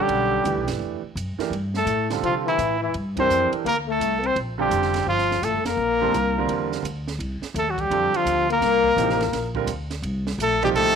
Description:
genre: modal jazz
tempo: 169 BPM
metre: 4/4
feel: swing 64% on 8ths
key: C dorian from 7.2 s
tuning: A4 = 441 Hz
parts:
  - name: clear trumpet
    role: melody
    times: 0.0-11.0 s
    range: E4 to C5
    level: -22 LUFS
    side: right 3 dB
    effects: none
  - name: breathy trombone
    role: second line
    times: 0.0-11.0 s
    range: E3 to C4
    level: -25 LUFS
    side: left 11 dB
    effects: slapback echo
  - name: warm baby grand piano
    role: accompaniment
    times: 0.0-11.0 s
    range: Bb2 to F#5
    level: -26 LUFS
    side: right 12 dB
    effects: none
  - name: upright bass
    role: bass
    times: 0.0-11.0 s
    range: F1 to C3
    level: -29 LUFS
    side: equal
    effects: tube saturation
  - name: compact cocktail drum kit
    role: drums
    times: 0.1-10.9 s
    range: hi-hat, kick drum, ride cymbal, snare drum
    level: -36 LUFS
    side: right 5 dB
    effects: none
room: light reverb, studio reverb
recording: 1960s-style stereo with parts hard left and right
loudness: -20 LUFS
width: side -7 dB against mid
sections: 0.0-7.2 A section; 7.2-11.0 B section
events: band accent 3.1, 5.6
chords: 0.0 Em11; 1.5 Gm11; 7.2 C9sus4

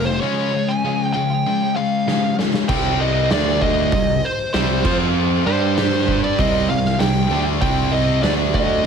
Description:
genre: quiet-loud alternative rock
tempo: 98 BPM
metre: 4/4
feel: straight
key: unclear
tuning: A4 = 440 Hz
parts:
  - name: fuzz lead guitar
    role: melody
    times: 0.0-8.9 s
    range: C5 to Ab5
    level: -22 LUFS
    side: right 1 dB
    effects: distortion
  - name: twelve-string electric guitar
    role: arpeggios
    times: 0.0-2.7 s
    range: Db3 to F4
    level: -26 LUFS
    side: right 3 dB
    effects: ensemble chorus
  - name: high-gain distorted guitar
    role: riff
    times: 0.0-8.8 s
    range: C3 to G4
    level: -23 LUFS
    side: left 12 dB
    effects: distortion
  - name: fuzz picked electric bass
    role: bass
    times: 0.0-8.8 s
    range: F1 to G2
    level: -22 LUFS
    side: right 1 dB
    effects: overdrive
  - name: oversized low-tuned drum kit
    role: drums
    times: 2.1-8.7 s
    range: crash cymbal, hi-hat, kick drum, snare drum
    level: -23 LUFS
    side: right 1 dB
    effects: none
  - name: fuzz guitar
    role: riff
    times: 2.7-8.8 s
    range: C3 to G4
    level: -22 LUFS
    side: right 13 dB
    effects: distortion
room: moderate studio reverb, RT60 0.8 s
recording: none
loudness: -16 LUFS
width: side -6 dB against mid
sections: 0.0-2.7 A section; 2.7-8.9 B section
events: drum fill 2.1-2.7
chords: 0.2 Db; 2.7 Cm; 3.3 D5; 3.9 C5; 4.9 F5; 5.5 G5; 6.4 C5; 8.2 D5

